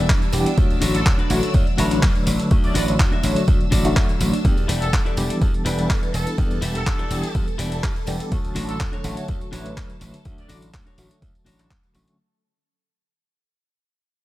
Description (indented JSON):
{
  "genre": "filtered disco house",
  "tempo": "124 BPM",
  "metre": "4/4",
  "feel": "swing 53% on 16ths",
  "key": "unclear",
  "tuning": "A4 = 440 Hz",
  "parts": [
    { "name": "tine electric piano", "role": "accompaniment", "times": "0.0-12.2 s", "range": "D3 to C#5", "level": "-25 LUFS", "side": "equal", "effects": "medium tremolo, phaser, sidechain pumping" },
    { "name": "phased string machine", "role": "sustained chords", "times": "0.0-12.2 s", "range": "D4 to E6", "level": "-31 LUFS", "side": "left 1 dB", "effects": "ensemble chorus, phaser, sidechain pumping" },
    { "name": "clean electric guitar", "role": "riff", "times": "0.0-12.1 s", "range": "D4 to E5", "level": "-30 LUFS", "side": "left 4 dB", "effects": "vintage 12-bit sampler grit, sidechain pumping" },
    { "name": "slap bass", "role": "bass", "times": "0.0-12.1 s", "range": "E1 to E2", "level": "-25 LUFS", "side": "equal", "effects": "sidechain pumping" },
    { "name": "dusty soul sampler-style drum kit", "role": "drums", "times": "0.1-12.2 s", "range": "handclaps, hi-hat", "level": "-29 LUFS", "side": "equal", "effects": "sidechain pumping on hats, sidechain pumping on cymbals" },
    { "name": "electronic kick drum", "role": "drums", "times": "0.1-11.8 s", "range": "none", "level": "-20 LUFS", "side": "equal", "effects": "none" },
    { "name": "tambourine", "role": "percussion", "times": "0.1-12.2 s", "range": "none", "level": "-38 LUFS", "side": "right 1 dB", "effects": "sidechain pumping on perc" },
    { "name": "clear horn section", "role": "melody", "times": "0.9-10.6 s", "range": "A4 to D5", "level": "-32 LUFS", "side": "equal", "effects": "sidechain pumping, tape echo" }
  ],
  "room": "digital ambience",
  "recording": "none",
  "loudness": "-18 LUFS",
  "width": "side -16 dB against mid",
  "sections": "0.0-12.2 A section",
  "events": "drop 0.0-12.2; fade-out 4.4-12.2",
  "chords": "0.0 Em7; 0.6 Dmaj7; 4.4 Em7; 8.3 Dmaj7",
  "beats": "0.09 | 0.57 1.06 1.54 2.03 | 2.51 3.00 3.48 3.96 | 4.45 4.93 5.41 5.90 | 6.38 6.87 7.35 7.83 | 8.32 8.80 9.29 9.77 | 10.25 10.74 11.22 11.71"
}